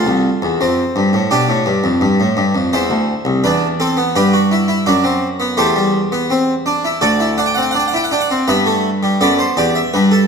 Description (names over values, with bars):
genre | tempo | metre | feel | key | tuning
classical, baroque-style 4-part fugue for harpsichord | 84 BPM | 4/4 | straight | unclear | A4 = 441 Hz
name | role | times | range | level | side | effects
harpsichord | solo | 0.0-10.3 s | C2 to G5 | -13 LUFS | equal | none
room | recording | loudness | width
wet recital hall reverb, RT60 1.5 s | none | -13 LUFS | side -6 dB against mid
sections
0.0-9.9 A section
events
none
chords
0.0 Dm7 (rootless); 1.3 G7; 2.7 C; 4.2 G; 5.6 Am7/E; 7.0 D7; 8.5 G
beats
0.60 | 1.31 2.02 2.73 3.44 | 4.15 4.87 5.58 6.30 | 7.03 7.75 8.47 9.20 | 9.92